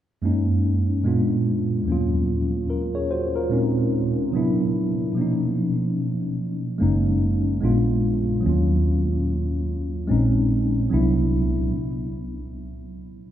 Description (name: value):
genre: R&B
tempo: 73 BPM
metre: 4/4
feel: swing 61% on 16ths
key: Bb minor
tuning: A4 = 440 Hz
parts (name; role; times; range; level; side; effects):
- mellow tine electric piano; accompaniment; 0.2-11.7 s; Eb2 to Db5; -22 LUFS; equal; medium stereo tremolo
- vintage muted fingered electric bass; bass; 6.8-11.7 s; Gb1 to Eb2; -22 LUFS; equal; none
room: wet church reverb, RT60 4.2 s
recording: recorded in a church or concert hall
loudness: -20 LUFS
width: side -11 dB against mid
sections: 0.2-13.3 A section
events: stop 11.7-13.3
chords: 0.2 Gb69; 1.0 Bb7b9; 1.9 Ebm9; 3.5 Bbm11; 4.3 Cmaj9#11; 5.2 Bmaj9#11; 6.8 Gb69; 7.6 Bb7b9; 8.4 Ebm9; 10.1 Bbm11; 10.9 Cmaj9#11; 11.7 N.C.